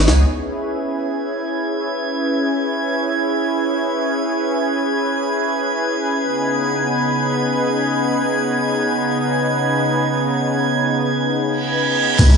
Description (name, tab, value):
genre	drum and bass, jungle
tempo	free time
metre	none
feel	none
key	C# minor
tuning	A4 = 440 Hz
part	lush unison pad	sustained chords	0.0-12.4 s	C#3 to C#5	-18 LUFS	equal	chorus
part	long sustained 808-style bass	bass	0.0-0.2, 12.2-12.4 s	C#2	-12 LUFS	equal	none
part	jungle sampler-style drum kit	drums	0.1-0.2, 12.2-12.4 s	crash cymbal, hi-hat, kick drum, snare drum	-15 LUFS	equal	none
part	drifting glass-harmonics texture	texture	1.0-12.4 s	G#6	-24 LUFS	right 2 dB	chorus, built-in reverb
part	reverse cymbal and sub drop	sound effects	11.6-12.4 s	none	-22 LUFS	right 4 dB	none
room	moderate lush hall reverb, RT60 2.2 s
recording	played on a big sound system in a bare room, stone room reverb, nothing above 10.3 kHz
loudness	-17 LUFS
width	side -5 dB against mid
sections	0.3-12.2 A section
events	reverse cymbal 11.6-12.2; impact 12.2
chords	0.3 C#m7; 6.2 G#m/C#